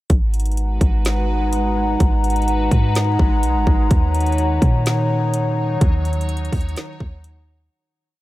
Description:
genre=hip hop, atmospheric cloud-rap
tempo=126 BPM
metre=4/4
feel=half-time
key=G# minor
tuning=A4 = 440 Hz
part: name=dark analog pad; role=sustained chords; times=0.1-7.7 s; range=D#3 to A#5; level=-22 LUFS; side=left 1 dB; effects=chorus, sidechain pumping
part: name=clean 808-style bass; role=bass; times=0.1-7.7 s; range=G#1 to A#2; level=-19 LUFS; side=equal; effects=none
part: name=trap drum kit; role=drums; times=0.1-7.4 s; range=hi-hat, kick drum, snare drum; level=-18 LUFS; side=equal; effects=none
part: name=backwards swelling texture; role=texture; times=0.7-7.7 s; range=F#3 to C#5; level=-32 LUFS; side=right 1 dB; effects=built-in reverb
room=little or no reverb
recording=none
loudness=-16 LUFS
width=side -17 dB against mid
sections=0.1-7.7 verse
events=fade-out 5.8-7.7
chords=0.1 G#m7; 3.9 D#m7

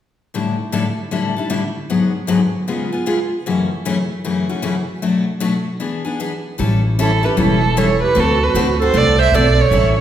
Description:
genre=acoustic string swing (jazz manouche)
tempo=153 BPM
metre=4/4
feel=swing 64% on 8ths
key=unclear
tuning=A4 = 440 Hz
part: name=picked steel-string acoustic guitar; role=accompaniment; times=0.3-9.9 s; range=F#2 to A4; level=-18 LUFS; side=left 3 dB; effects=none
part: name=upright bass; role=bass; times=6.6-10.0 s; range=E1 to D2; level=-17 LUFS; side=equal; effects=none
part: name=warm violin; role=melody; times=7.0-10.0 s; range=A4 to E5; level=-16 LUFS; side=right 3 dB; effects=none
part: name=breathy clarinet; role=second line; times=7.0-10.0 s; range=E4 to C5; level=-20 LUFS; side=right 7 dB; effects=none
room=wet recital hall reverb, RT60 1.6 s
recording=recorded in a church or concert hall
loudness=-15 LUFS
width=side -10 dB against mid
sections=0.3-6.6 A section; 6.6-10.0 B section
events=none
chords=0.3 A7sus4; 1.9 G#m7b5; 2.7 C#7; 3.5 F#m7; 5.0 Bm7; 5.8 E7; 6.6 A7; 8.2 D7

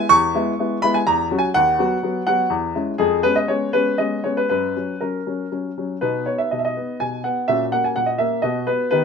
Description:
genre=classical-period piano sonatina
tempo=116-128 BPM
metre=3/4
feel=rubato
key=B major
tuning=A4 = 441 Hz
part: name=warm baby grand piano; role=solo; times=0.0-9.0 s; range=D#2 to C#6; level=-18 LUFS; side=equal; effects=none
room=light reverb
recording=minimal, uncompressed stereo recording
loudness=-18 LUFS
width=side -6 dB against mid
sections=0.0-6.0 A section; 6.0-9.0 B section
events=none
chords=0.1 C#m7/E; 1.1 F#7/E; 1.6 B/D#; 2.5 C#m/E; 3.0 C#7/E#; 4.5 F#; 6.0 B; 7.5 F#/A#; 8.4 B

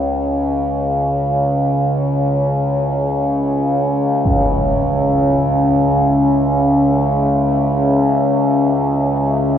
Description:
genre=dark ambient drone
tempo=free time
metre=none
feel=none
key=C# minor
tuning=A4 = 443 Hz
part: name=deep dark ambient pad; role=sustained chords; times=0.0-9.6 s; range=B3 to E5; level=-19 LUFS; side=left 2 dB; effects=chorus, built-in reverb
part: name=overtone-sweeping drone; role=drone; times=0.0-9.6 s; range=C#2 to C#3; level=-16 LUFS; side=right 1 dB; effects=chorus, built-in reverb
part: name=impact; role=percussion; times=4.3-4.5 s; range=none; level=-24 LUFS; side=equal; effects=low-pass filter on sfx
room=wet cathedral reverb, RT60 5.0 s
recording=worn, warbling old tape, cassette tape, warbly pitch drift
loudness=-14 LUFS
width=side -9 dB against mid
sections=0.0-9.6 A section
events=none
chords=0.0 C#m

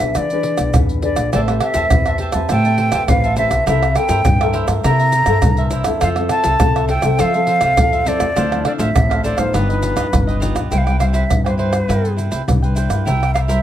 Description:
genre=samba and choro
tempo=102 BPM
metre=4/4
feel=straight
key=C major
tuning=A4 = 440 Hz
part: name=silver concert flute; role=melody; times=0.0-13.6 s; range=B4 to Bb5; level=-19 LUFS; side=right 1 dB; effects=plate reverb
part: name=nylon-string guitar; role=accompaniment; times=0.0-13.6 s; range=G2 to B4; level=-22 LUFS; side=left 4 dB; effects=none
part: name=upright bass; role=bass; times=0.0-13.6 s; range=G1 to F3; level=-19 LUFS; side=equal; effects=none
part: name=tube shaker, surdo, pandeiro and tamborim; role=percussion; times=0.1-13.6 s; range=none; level=-19 LUFS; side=right 1 dB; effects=none
part: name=cavaquinho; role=accompaniment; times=1.3-13.6 s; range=D4 to A5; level=-25 LUFS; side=right 4 dB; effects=none
room=moderate small room reverb, RT60 0.5 s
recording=none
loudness=-14 LUFS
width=side -11 dB against mid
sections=0.0-10.7 A section; 10.7-13.6 B section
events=none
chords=0.0 E7; 1.3 Am9; 3.7 C6; 6.0 Fmaj7; 8.4 Dm9; 9.5 G7b13; 10.7 Cmaj7; 13.1 C7

